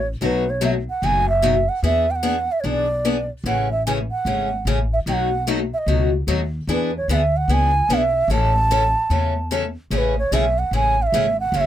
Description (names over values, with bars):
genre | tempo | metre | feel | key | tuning
acoustic string swing (jazz manouche) | 148 BPM | 4/4 | swing 63% on 8ths | A major | A4 = 440 Hz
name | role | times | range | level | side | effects
breathy bass bansuri | melody | 0.0-11.7 s | B4 to A5 | -20 LUFS | right 2 dB | none
upright bass | bass | 0.0-11.7 s | F#1 to E2 | -23 LUFS | equal | none
picked steel-string acoustic guitar | accompaniment | 0.2-11.7 s | B2 to A4 | -23 LUFS | left 4 dB | none
room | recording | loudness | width
little or no reverb | close, detailed microphones | -18 LUFS | side -11 dB against mid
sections
0.0-9.9 A section; 9.9-11.7 A section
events
none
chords
0.2 B7; 1.8 E7; 3.4 Amaj7; 5.1 B7; 6.7 E7; 8.3 A; 9.9 Amaj7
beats
| 0.21 0.62 1.02 1.43 | 1.83 2.23 2.64 3.04 | 3.45 3.85 4.26 4.66 | 5.07 5.47 5.87 6.28 | 6.68 7.09 7.49 7.90 | 8.30 8.71 9.11 9.51 | 9.92 10.32 10.73 11.13 | 11.54